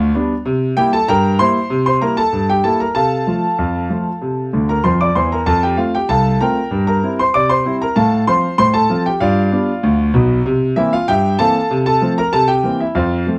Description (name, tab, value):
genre	ragtime piano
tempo	96 BPM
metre	2/4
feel	straight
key	unclear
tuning	A4 = 440 Hz
part	warm grand piano	solo	0.0-13.4 s	B1 to D6	-16 LUFS	equal	none
room	moderate studio ambience, RT60 0.4 s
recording	heard from further back in the room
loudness	-16 LUFS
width	mono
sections	0.0-13.4 A section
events	grand piano fill 4.5-5.5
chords	0.5 C7; 3.0 F/C; 4.2 C; 5.5 F; 6.7 C7/G; 8.0 F/A; 9.2 G7; 10.5 C7; 11.7 F/C; 12.3 C7